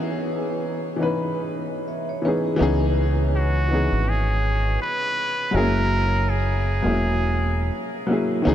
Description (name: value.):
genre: lo-fi hip hop.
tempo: 82 BPM.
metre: 4/4.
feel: swing 58% on 16ths.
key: C# dorian.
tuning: A4 = 440 Hz.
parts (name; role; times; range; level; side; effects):
warm upright piano; accompaniment; 0.0-8.5 s; D#3 to B4; -24 LUFS; left 1 dB; cassette tape, low-pass filter.
vibraphone with soft mallets; second line; 1.9-2.8 s; E4 to E5; -34 LUFS; right 3 dB; none.
deep dub fingered electric bass; bass; 2.6-8.5 s; E1 to C#2; -22 LUFS; right 1 dB; none.
trumpet with straight mute; melody; 3.4-8.1 s; F#4 to B4; -25 LUFS; equal; low-pass filter, ping-pong delay.
room: moderate huge ambient reverb, RT60 7.8 s.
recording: dreamy mix soaked in reverb.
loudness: -20 LUFS.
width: side -11 dB against mid.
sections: 0.0-2.6 A section; 2.6-8.5 A section.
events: break 0.0-2.6.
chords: 0.0 C#m9; 5.5 F#7.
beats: 0.42 1.15 1.88 | 2.61 3.34 4.08 4.81 | 5.54 6.27 7.00 7.73 | 8.46.